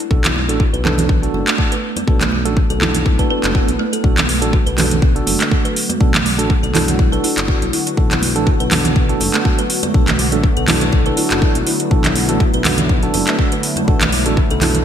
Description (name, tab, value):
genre	afro house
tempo	122 BPM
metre	4/4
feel	swing 54% on 16ths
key	B minor pentatonic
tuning	A4 = 440 Hz
part	kalimba	arpeggios	0.0-14.7 s	F#3 to B4	-22 LUFS	equal	sidechain pumping, low-pass filter, ping-pong delay
part	house drum kit	drums	0.0-14.8 s	handclaps, hi-hat	-20 LUFS	equal	gated reverb
part	tine electric piano	stabs	0.1-14.8 s	D4 to A4	-23 LUFS	right 4 dB	medium stereo tremolo, sidechain pumping, ping-pong delay
part	smooth synth bass	bass	0.1-14.8 s	F#1 to B1	-22 LUFS	left 1 dB	sidechain pumping
part	electronic kick drum	drums	0.1-14.5 s	none	-16 LUFS	left 1 dB	none
part	congas	percussion	0.2-14.8 s	none	-24 LUFS	right 4 dB	none
part	swell	sound effects	3.3-4.0 s	none	-26 LUFS	left 1 dB	none
part	warm analog pad	sustained chords	4.0-14.8 s	D3 to F#4	-24 LUFS	equal	chorus, sidechain pumping
room	light reverb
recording	bright 1980s-style digital production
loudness	-13 LUFS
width	side -9 dB against mid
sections	0.0-14.8 A section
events	swell 3.3-4.0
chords	0.0 Bm7